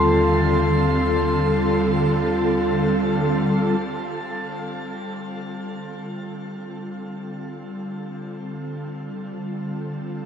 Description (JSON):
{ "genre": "ambient", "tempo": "free time", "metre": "none", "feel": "none", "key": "F major", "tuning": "A4 = 440 Hz", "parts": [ { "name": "ethereal airy pad", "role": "sustained chords", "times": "0.0-10.3 s", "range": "D3 to A4", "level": "-22 LUFS", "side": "equal", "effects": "ensemble chorus, built-in reverb" }, { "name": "vibraphone with soft mallets", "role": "arpeggios", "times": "0.0-10.3 s", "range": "G3 to C6", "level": "-28 LUFS", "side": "equal", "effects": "tape echo" }, { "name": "deep rumbling drone", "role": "bass", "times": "0.0-3.8 s", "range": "Eb2", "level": "-28 LUFS", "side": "equal", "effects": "built-in reverb" } ], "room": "wet shimmer reverb, RT60 7.2 s", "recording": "none", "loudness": "-21 LUFS", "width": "side -8 dB against mid", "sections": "0.0-3.8 A section; 3.8-10.3 A section", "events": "fade-in on ambient pad 3.8-10.3", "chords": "0.0 Ebmaj7; 3.8 F", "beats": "free time" }